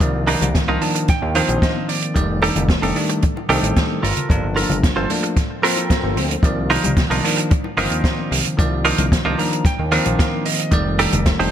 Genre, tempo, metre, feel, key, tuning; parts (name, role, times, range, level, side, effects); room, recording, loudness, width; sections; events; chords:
nu-disco, nu disco; 112 BPM; 4/4; straight; C dorian; A4 = 444 Hz
bell-like tine electric piano; accompaniment; 0.0-11.5 s; Eb3 to D5; -22 LUFS; equal; digital delay
fat analog bass; bass; 0.0-11.5 s; F1 to Eb2; -22 LUFS; equal
kick drum; drums; 0.0-11.4 s; -19 LUFS; equal
open jazz drum kit; drums; 0.0-11.5 s; hi-hat, snare drum; -24 LUFS; right 3 dB; gated reverb
direct-recorded clean electric guitar; riff; 0.3-11.5 s; D4 to Bb5; -22 LUFS; right 3 dB; wide subtle chorus, digital delay
bongos and congas; percussion; 0.3-11.2 s; -29 LUFS; left 3 dB
swell; sound effects; 5.5-6.4 s; -30 LUFS; left 4 dB
moderate plate reverb, RT60 2.0 s; bright 1980s-style digital production; -16 LUFS; side -10 dB against mid
0.0-11.5 A section
clean electric guitar fill 0.6-2.2, 9.1-10.7; swell 5.5-6.4
0.0 Cm11; 2.2 F13; 4.0 Gm9; 6.4 Cm11; 10.7 F13